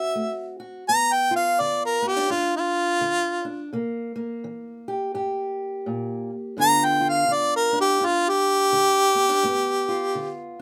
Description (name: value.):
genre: acoustic country blues, solo or duo.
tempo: 84 BPM.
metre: 4/4.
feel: swing 60% on 8ths.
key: G mixolydian.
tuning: A4 = 439 Hz.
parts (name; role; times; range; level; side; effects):
clear harmonica; melody; 0.0-10.4 s; F4 to Bb5; -22 LUFS; equal; none.
fingerpicked steel-string acoustic guitar; accompaniment; 0.0-10.6 s; G2 to G4; -32 LUFS; equal; none.
room: light reverb.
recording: rough home demo mix.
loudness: -23 LUFS.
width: mono.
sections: 0.9-10.6 A section.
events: harmonica solo 0.9-10.6.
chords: 0.0 D7 (rootless); 0.9 G7; 3.7 C7; 6.6 G7.